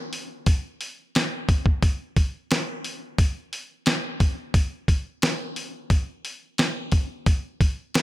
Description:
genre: rock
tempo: 88 BPM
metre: 4/4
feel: straight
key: none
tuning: none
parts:
  - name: dusty soul sampler-style drum kit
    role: drums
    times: 0.1-8.0 s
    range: hi-hat, kick drum, snare drum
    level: -21 LUFS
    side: equal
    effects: none
room: digital ambience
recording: none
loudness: -22 LUFS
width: side -17 dB against mid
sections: 0.0-8.0 A section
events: none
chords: none

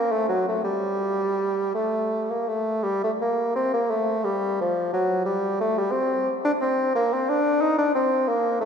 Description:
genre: classical, baroque-style fantasia for unaccompanied bassoon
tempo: 82-91 BPM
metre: 3/4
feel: rubato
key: G minor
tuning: A4 = 440 Hz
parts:
  - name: warm bassoon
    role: solo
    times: 0.0-8.7 s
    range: F3 to Eb4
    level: -21 LUFS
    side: equal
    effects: none
room: wet church reverb, RT60 3.6 s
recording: heard from further back in the room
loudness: -21 LUFS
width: side -6 dB against mid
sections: 0.0-2.8 A section; 2.8-8.7 B section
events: none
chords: none

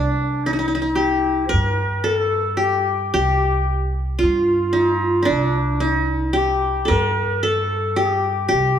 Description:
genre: Arabic maqam ensemble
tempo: 112 BPM (eighths)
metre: 10/8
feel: straight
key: C maqam rast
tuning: A4 = 439 Hz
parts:
  - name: qanun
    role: melody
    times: 0.0-8.8 s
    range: D4 to Bb4+50c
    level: -19 LUFS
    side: left 1 dB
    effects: none
  - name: clear clarinet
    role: second line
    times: 0.0-8.8 s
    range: D4 to C5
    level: -25 LUFS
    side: left 1 dB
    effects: none
  - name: upright bass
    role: bass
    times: 0.0-8.8 s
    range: C2 to G2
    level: -23 LUFS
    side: right 1 dB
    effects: none
room: moderate recital hall reverb, RT60 1.5 s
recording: recorded in a church or concert hall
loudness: -17 LUFS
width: side -9 dB against mid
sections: 0.0-8.8 A section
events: none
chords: none

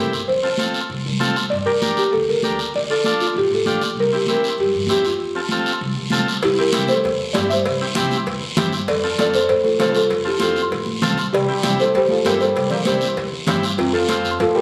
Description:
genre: latin, cumbia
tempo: 196 BPM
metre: 4/4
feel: straight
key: unclear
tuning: A4 = 441 Hz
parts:
  - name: buzzing marimba with soft mallets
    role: melody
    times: 0.0-14.6 s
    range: C4 to E5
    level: -21 LUFS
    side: equal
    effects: none
  - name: combo organ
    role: accompaniment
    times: 0.0-14.3 s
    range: C4 to C5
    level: -26 LUFS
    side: equal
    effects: none
  - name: upright bass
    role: bass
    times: 0.0-14.6 s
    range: A1 to A2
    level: -29 LUFS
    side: equal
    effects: none
  - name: guiro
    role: percussion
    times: 0.1-14.6 s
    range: none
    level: -29 LUFS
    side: equal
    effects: none
  - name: congas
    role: percussion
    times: 0.3-14.5 s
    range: none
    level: -28 LUFS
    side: equal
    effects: none
  - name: cowbell and timbales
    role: percussion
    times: 6.4-14.6 s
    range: none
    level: -30 LUFS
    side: equal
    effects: none
  - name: bright trombone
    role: second line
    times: 11.3-14.6 s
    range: C3 to Bb3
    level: -30 LUFS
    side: equal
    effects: none
room: moderate studio reverb, RT60 0.6 s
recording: recorded on a phone in the room, club reverb, compression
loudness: -19 LUFS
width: mono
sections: 0.0-6.4 A section; 6.4-14.6 B section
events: none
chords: 0.3 F; 1.5 Gm; 2.7 Dm; 4.0 C7; 5.2 F; 6.4 C; 8.9 F; 11.3 C; 13.8 F

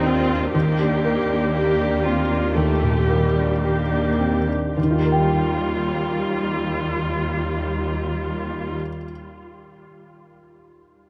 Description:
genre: cinematic, emotional film score for orchestra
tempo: 52-63 BPM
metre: 4/4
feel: rubato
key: Eb major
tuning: A4 = 440 Hz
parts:
  - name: rich studio viola section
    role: accompaniment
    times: 0.0-8.8 s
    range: G3 to G4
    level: -27 LUFS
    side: equal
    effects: none
  - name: warm grand piano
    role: accompaniment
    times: 0.0-11.1 s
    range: Eb2 to G5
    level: -25 LUFS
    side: equal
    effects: none
  - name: clear studio cello section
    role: bass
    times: 0.0-8.7 s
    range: Eb2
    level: -27 LUFS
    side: equal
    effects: none
room: wet cathedral reverb, RT60 6.2 s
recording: in a vast, echoing space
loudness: -21 LUFS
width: mono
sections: 0.0-4.8 A section; 4.8-9.3 B section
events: slowing down 0.0-4.8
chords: 0.0 Cmadd9/Eb; 0.5 Gm/Eb; 4.8 Ebadd9

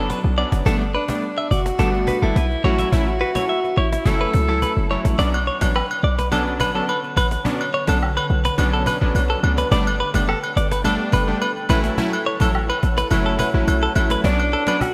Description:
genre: afrobeats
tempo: 106 BPM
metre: 4/4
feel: straight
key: B minor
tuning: A4 = 440 Hz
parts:
  - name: warm analog keys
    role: accompaniment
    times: 0.0-14.8 s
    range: F#3 to E4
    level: -27 LUFS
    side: equal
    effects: chorus
  - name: direct-recorded clean electric guitar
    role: riff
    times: 0.0-14.8 s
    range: A4 to E5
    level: -27 LUFS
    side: equal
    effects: digital delay
  - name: short 808-style bass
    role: bass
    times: 0.0-14.6 s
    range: F#1 to C#2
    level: -23 LUFS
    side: equal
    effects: none
  - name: cajon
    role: drums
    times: 0.1-14.9 s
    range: none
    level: -32 LUFS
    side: equal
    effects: none
  - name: warm alto saxophone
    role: melody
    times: 0.9-4.9, 14.2-14.9 s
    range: D4 to A4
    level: -26 LUFS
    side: equal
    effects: digital delay
  - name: glassy FM pad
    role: sustained chords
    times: 6.2-14.9 s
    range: D3 to C#6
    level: -34 LUFS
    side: equal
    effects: ensemble chorus, built-in reverb
  - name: agogo bells and woodblock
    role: percussion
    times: 5.3-14.9 s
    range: none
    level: -28 LUFS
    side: equal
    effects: none
room: moderate lush hall reverb, RT60 2.4 s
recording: bright 1980s-style digital production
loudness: -20 LUFS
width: mono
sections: 0.0-5.2 A section; 5.2-14.2 B section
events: none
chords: 0.0 Bmadd9; 0.7 Gadd9; 2.6 A6; 4.1 F#m7; 5.2 Bmadd9; 9.7 Gadd9; 11.7 A6; 14.2 Bmadd9

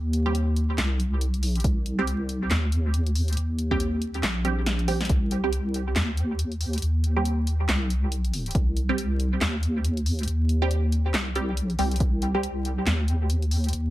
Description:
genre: deep dubstep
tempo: 139 BPM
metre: 4/4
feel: swing 59% on 16ths, half-time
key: C minor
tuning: A4 = 441 Hz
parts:
  - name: deep soft wobble bass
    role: bass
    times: 0.0-13.9 s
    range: Bb1 to Eb2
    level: -24 LUFS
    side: equal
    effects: chorus
  - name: deep house drum kit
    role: drums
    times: 0.1-13.8 s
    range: handclaps, hi-hat, snare drum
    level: -30 LUFS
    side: equal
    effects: none
  - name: filtered dub chord stab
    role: stabs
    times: 0.3-12.4 s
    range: G3 to G4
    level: -30 LUFS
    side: right 3 dB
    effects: phaser, dub echo
  - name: electronic kick drum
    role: drums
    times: 1.6-5.2, 8.5-8.7, 12.0-12.1 s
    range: none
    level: -24 LUFS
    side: equal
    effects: none
room: digital ambience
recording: vinyl crackle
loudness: -23 LUFS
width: side -16 dB against mid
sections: 0.0-13.9 A section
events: drum fill 4.7-5.1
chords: 0.0 C5

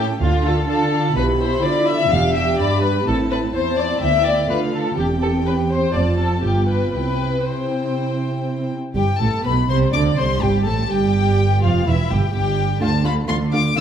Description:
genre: quick classical-period movement for string orchestra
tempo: 125 BPM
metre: 4/4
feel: rubato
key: C major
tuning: A4 = 444 Hz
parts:
  - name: warm chamber violin section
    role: melody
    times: 0.0-13.8 s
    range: E5 to E6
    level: -27 LUFS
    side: left 7 dB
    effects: none
  - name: warm studio violin section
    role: second line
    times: 0.0-13.8 s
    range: E4 to F5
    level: -22 LUFS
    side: left 3 dB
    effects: none
  - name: warm chamber viola section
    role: accompaniment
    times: 0.0-13.8 s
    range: E3 to G4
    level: -24 LUFS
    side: right 1 dB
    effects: none
  - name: dark chamber cello section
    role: bass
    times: 0.0-13.8 s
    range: D2 to D3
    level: -22 LUFS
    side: right 2 dB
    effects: none
  - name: clear chamber double bass section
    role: bass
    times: 0.2-13.8 s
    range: E1 to D2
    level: -22 LUFS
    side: right 2 dB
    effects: none
room: wet recital hall reverb, RT60 1.5 s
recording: none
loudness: -16 LUFS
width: side -8 dB against mid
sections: 0.0-9.0 A section; 9.0-13.8 A section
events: none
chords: 0.2 Dm; 1.2 Bdim; 2.1 Em7; 3.1 Am; 4.0 Dm; 5.0 C/E; 5.9 Dm7/F; 6.4 G7; 6.9 C; 9.0 C5/G; 10.9 Fsus2; 11.9 Em; 12.8 Dm

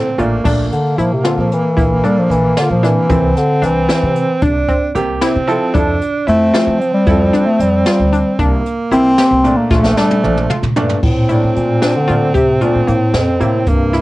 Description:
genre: progressive instrumental, band music in an uneven meter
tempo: 227 BPM (eighths)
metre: 5/8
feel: straight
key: Bb lydian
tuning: A4 = 440 Hz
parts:
  - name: mellow bass clarinet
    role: melody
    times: 0.0-14.0 s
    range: F2 to C4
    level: -14 LUFS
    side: left 1 dB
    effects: cassette tape
  - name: warm alto saxophone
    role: second line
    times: 0.0-14.0 s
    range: A3 to D4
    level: -19 LUFS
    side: right 3 dB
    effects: cassette tape
  - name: clear baby grand piano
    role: accompaniment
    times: 0.0-13.6 s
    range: Bb2 to C5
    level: -20 LUFS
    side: right 2 dB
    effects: cassette tape
  - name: analog pluck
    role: arpeggios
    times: 0.0-14.0 s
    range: Bb3 to G4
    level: -21 LUFS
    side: left 2 dB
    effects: chorus, cassette tape
  - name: upright bass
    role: bass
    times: 0.0-14.0 s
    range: A1 to F3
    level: -19 LUFS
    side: equal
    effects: none
  - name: jazz brush drum kit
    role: drums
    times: 0.2-14.0 s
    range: crash cymbal, hi-hat, kick drum, snare drum, toms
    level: -20 LUFS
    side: equal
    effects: cassette tape
room: light reverb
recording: home recording on cassette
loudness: -11 LUFS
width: side -18 dB against mid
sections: 0.5-11.0 A section; 11.0-14.0 B section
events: bass clarinet solo 0.5-11.0; drum fill 9.7-11.0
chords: 0.5 Bbmaj7; 3.1 C7; 5.7 Fmaj7; 8.4 C7; 9.7 Bbmaj7

